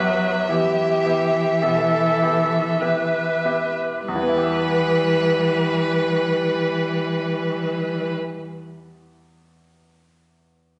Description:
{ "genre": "classical, slow romantic movement for piano quartet", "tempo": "46-53 BPM", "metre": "4/4", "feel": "rubato", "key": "E minor", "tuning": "A4 = 440 Hz", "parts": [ { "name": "rich violin", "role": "melody", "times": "0.0-8.1 s", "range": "B4 to E5", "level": "-25 LUFS", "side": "equal", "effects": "none" }, { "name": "rich cello", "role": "second line", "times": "0.0-8.1 s", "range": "E3 to F#3", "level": "-27 LUFS", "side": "equal", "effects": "none" }, { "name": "bright grand piano", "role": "accompaniment", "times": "0.0-10.8 s", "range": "E2 to E5", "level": "-30 LUFS", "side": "equal", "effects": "none" }, { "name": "clear viola", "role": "accompaniment", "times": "0.0-8.1 s", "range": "G3 to B4", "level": "-28 LUFS", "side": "equal", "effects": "none" } ], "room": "wet recital hall reverb, RT60 1.6 s", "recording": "nothing above 10.9 kHz", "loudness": "-21 LUFS", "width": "mono", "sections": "0.0-4.1 A section; 4.1-9.0 B section", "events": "slowing down 0.0-4.1", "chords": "0.0 Em" }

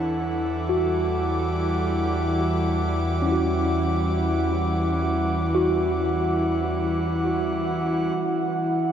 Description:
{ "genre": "ambient", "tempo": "free time", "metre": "none", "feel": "none", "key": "E dorian", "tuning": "A4 = 438 Hz", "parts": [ { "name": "airy breathy pad", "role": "sustained chords", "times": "0.0-8.9 s", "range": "E3 to D6", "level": "-24 LUFS", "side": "equal", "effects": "chorus" }, { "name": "tine electric piano", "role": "arpeggios", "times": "0.0-8.9 s", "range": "C#4 to F#4", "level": "-27 LUFS", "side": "equal", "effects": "overdrive, medium stereo tremolo, diffuse ambient delay" }, { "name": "warm sub bass", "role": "bass", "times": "0.0-8.1 s", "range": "E2", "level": "-28 LUFS", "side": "equal", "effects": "none" } ], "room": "wet huge ambient reverb, RT60 7.8 s", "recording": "none", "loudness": "-21 LUFS", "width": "side -9 dB against mid", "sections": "0.0-8.2 A section", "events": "none", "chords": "0.0 Em9; 8.2 A5/E (rootless)" }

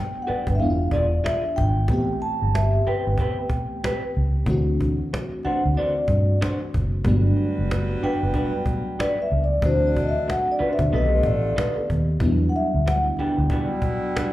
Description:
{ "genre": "R&B, neo-soul", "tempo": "93 BPM", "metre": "4/4", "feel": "swing 61% on 16ths", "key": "E minor", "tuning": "A4 = 440 Hz", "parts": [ { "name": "vibraphone with soft mallets", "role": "melody", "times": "0.0-14.3 s", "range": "C5 to A5", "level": "-26 LUFS", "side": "left 1 dB", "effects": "slapback echo" }, { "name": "FM electric piano with soft pad layer", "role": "accompaniment", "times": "0.0-14.3 s", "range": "D3 to G4", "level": "-28 LUFS", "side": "equal", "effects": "chorus, tremolo" }, { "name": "electric guitar through a small old amp", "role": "second line", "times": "0.3-14.3 s", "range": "G3 to D5", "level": "-30 LUFS", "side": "right 1 dB", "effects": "slapback echo" }, { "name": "vintage muted fingered electric bass", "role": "bass", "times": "0.3-13.5 s", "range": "E1 to G2", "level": "-22 LUFS", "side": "equal", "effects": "none" }, { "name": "cajon", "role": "drums", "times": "0.3-14.3 s", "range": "none", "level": "-28 LUFS", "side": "equal", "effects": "slapback echo" }, { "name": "warm horn section", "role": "stabs", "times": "7.0-14.3 s", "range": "B2 to B4", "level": "-31 LUFS", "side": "equal", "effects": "slapback echo" } ], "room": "light reverb", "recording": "live gig heard through the venue's PA, club reverb", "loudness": "-20 LUFS", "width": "side -15 dB against mid", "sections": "0.0-14.3 A section", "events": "none", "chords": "0.0 Gmaj7; 0.6 E7b9; 1.9 Am9; 4.5 D7; 7.0 Gmaj7; 9.6 D7; 10.9 B7alt; 12.2 Em9" }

